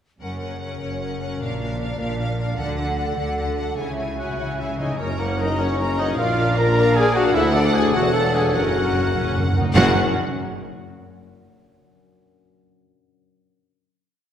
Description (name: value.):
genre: cinematic, heroic adventure film score.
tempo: 101 BPM (dotted quarters).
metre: 6/8.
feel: straight.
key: F# major from 5.0 s.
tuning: A4 = 439 Hz.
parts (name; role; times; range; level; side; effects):
clear studio violin section; melody; 0.2-10.0 s; D5 to A#5; -30 LUFS; left 2 dB; none.
dark clarinet; second line; 0.2-9.9 s; G#4 to A#4; -34 LUFS; equal; none.
mellow hollow large flute ensemble; second line; 0.2-10.0 s; C#5 to F#5; -32 LUFS; left 1 dB; none.
warm symphonic violin section; second line; 0.2-10.0 s; A4 to A#5; -33 LUFS; left 1 dB; none.
clear symphonic viola section; accompaniment; 0.2-10.0 s; A#3 to D5; -31 LUFS; equal; none.
mellow French horn section; sustained chords; 0.2-9.9 s; G#3 to A#4; -26 LUFS; left 3 dB; none.
concert harp; arpeggios; 0.2-11.0 s; F#2 to D5; -32 LUFS; left 3 dB; none.
rich symphonic cello section; bass; 0.2-10.0 s; D2 to D3; -27 LUFS; right 2 dB; none.
warm symphonic double bass section; bass; 0.2-10.0 s; E1 to D2; -29 LUFS; right 1 dB; none.
timpani; percussion; 3.8-4.9, 8.5-9.9 s; F#2 to C#3; -26 LUFS; right 1 dB; none.
warm oboe; second line; 4.2-9.9 s; A#4 to A#5; -30 LUFS; right 1 dB; none.
warm trumpet; stabs; 4.2-9.9 s; A#3 to A#4; -28 LUFS; equal; none.
warm trombone section; sustained chords; 5.0-9.9 s; E#3 to D4; -32 LUFS; right 1 dB; none.
clear tuba; bass; 5.0-9.9 s; E1 to D2; -26 LUFS; right 1 dB; none.
room: wet concert hall reverb, RT60 1.8 s.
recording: recorded in a church or concert hall.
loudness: -19 LUFS.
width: side -9 dB against mid.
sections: 0.2-5.0 build; 5.0-9.8 theme; 9.8-10.9 final chord.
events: build-up 0.2-5.0; timpani fill 3.8-5.0, 8.5-9.8.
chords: 0.2 F#; 1.4 A#; 2.6 D; 3.8 C#m; 5.0 F#; 6.2 A#; 7.4 D; 8.5 F#.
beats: | 0.22 0.81 | 1.41 1.99 | 2.58 3.18 | 3.78 4.39 | 4.99 5.59 | 6.18 6.77 | 7.35 7.95 | 8.55 9.15 | 9.76 10.35.